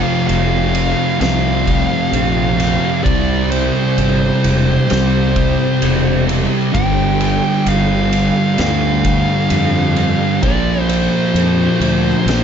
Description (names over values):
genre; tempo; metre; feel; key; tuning
stoner and doom metal; 65 BPM; 4/4; straight; unclear; A4 = 439 Hz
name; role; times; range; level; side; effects
fuzz lead guitar; melody; 0.0-12.4 s; C5 to G5; -21 LUFS; right 1 dB; distortion, digital delay
organ-like drone; sustained chords; 1.8-12.4 s; F3 to D5; -31 LUFS; left 1 dB; none
thick fuzz guitar; riff; 0.0-12.4 s; F2 to C4; -19 LUFS; left 8 dB; distortion
thick fuzz guitar; riff; 0.0-12.4 s; F2 to C4; -19 LUFS; right 9 dB; distortion
thick fuzz guitar; riff; 0.0-12.4 s; F2 to C4; -22 LUFS; equal; distortion
fuzz fingered electric bass; bass; 0.3-12.4 s; E1 to F2; -20 LUFS; equal; overdrive
oversized low-tuned drum kit; drums; 0.3-12.4 s; kick drum, ride cymbal, snare drum; -22 LUFS; right 1 dB; none
room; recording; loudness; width
small room ambience; dark, warm production, nothing above 7.5 kHz; -13 LUFS; side -8 dB against mid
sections
0.0-12.4 A section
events
none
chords
0.0 F5; 3.1 C; 6.7 G5; 10.4 Bb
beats
0.29 1.21 2.13 | 3.05 3.97 4.89 5.82 | 6.74 7.66 8.58 9.51 | 10.43 11.35 12.28